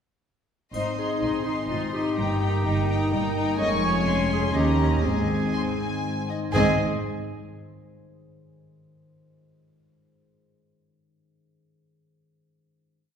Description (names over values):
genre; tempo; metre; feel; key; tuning
cinematic, playful, whimsical film cue; 118-127 BPM; 3/4; straight; Ab major; A4 = 440 Hz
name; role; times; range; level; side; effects
warm studio violin section; melody; 0.7-6.8 s; Ab5 to Db6; -32 LUFS; left 2 dB; none
bright clarinet; second line; 0.7-6.7 s; Eb4 to Eb5; -31 LUFS; right 1 dB; none
warm studio violin section; second line; 0.7-6.8 s; Eb5 to C6; -32 LUFS; left 2 dB; none
rich studio viola section; accompaniment; 0.7-6.8 s; C4 to Eb4; -31 LUFS; right 1 dB; none
mellow French horn section; sustained chords; 0.7-6.8 s; Ab3 to Eb4; -31 LUFS; left 3 dB; none
concert harp; arpeggios; 0.7-8.1 s; F2 to Eb5; -30 LUFS; left 2 dB; none
dark studio double bass section; bass; 0.7-6.8 s; F1 to Eb2; -30 LUFS; right 2 dB; none
warm studio cello section; bass; 0.7-6.8 s; Eb2 to Ab2; -30 LUFS; right 2 dB; none
triangle; percussion; 0.7-1.7 s; none; -52 LUFS; left 1 dB; none
room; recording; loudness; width
wet scoring stage reverb, RT60 1.8 s; heard from further back in the room; -22 LUFS; side -7 dB against mid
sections
0.7-6.5 A section; 6.5-8.0 final chord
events
none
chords
0.7 Ab; 2.2 Eb/G; 3.6 Db/F; 4.5 Eb7; 5.0 Ab